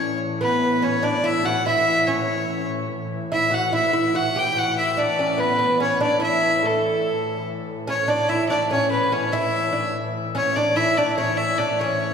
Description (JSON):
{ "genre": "medieval dance", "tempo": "145 BPM", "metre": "3/4", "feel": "straight", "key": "A major", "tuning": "A4 = 440 Hz", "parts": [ { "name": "clear fiddle", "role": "melody", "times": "0.0-12.1 s", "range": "A4 to G5", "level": "-21 LUFS", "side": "left 1 dB", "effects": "none" }, { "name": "oud", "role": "second line", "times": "0.0-12.1 s", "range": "A3 to G4", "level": "-24 LUFS", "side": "right 2 dB", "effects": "none" }, { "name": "pipe organ, strings celeste", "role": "drone", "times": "0.0-12.1 s", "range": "A2 to E3", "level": "-30 LUFS", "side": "left 2 dB", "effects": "none" } ], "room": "wet church reverb, RT60 3.4 s", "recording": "recorded in a church or concert hall, small room ambience", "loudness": "-19 LUFS", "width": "side -6 dB against mid", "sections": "0.0-7.9 A section; 7.9-12.1 B section", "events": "none", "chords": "none", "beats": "0.00 | 0.41 0.83 1.24 | 1.66 2.07 2.49 | 2.90 3.32 3.73 | 4.15 4.56 4.98 | 5.39 5.80 6.22 | 6.63 7.05 7.46 | 7.87 8.29 8.70 | 9.11 9.53 9.94 | 10.35 10.77 11.18 | 11.59 12.01" }